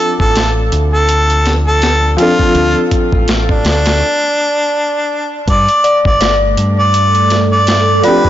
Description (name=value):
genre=trip hop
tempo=82 BPM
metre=4/4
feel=swing 57% on 16ths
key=D minor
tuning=A4 = 440 Hz
part: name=clear harmonica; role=melody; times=0.0-8.3 s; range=D4 to D5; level=-13 LUFS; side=equal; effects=dub echo
part: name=felt-muted upright piano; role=accompaniment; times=0.0-8.3 s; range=F3 to A4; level=-16 LUFS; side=left 1 dB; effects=harmonic tremolo, tape echo
part: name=deep dub fingered electric bass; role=bass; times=0.2-8.0 s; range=G1 to G2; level=-15 LUFS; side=equal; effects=tube saturation
part: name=dusty soul sampler-style drum kit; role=drums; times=0.2-8.3 s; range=hi-hat, kick drum, snare drum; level=-17 LUFS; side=equal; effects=overdrive
part: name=deep dark ambient pad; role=sustained chords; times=6.4-8.3 s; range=A3 to A4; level=-19 LUFS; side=right 3 dB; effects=chorus, built-in reverb
part: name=dark detuned synth bell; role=arpeggios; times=5.8-8.3 s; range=D5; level=-17 LUFS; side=left 3 dB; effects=chorus, phaser, tape echo
room=light reverb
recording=blown-out, overdriven recording, overdrive, nothing above 7.7 kHz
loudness=-10 LUFS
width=side -12 dB against mid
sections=0.0-5.5 A section; 5.5-8.3 B section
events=break 4.0-5.5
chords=0.0 Dm7; 5.5 G5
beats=0.36 1.09 1.82 | 2.55 3.28 4.02 4.75 | 5.48 6.21 6.94 7.67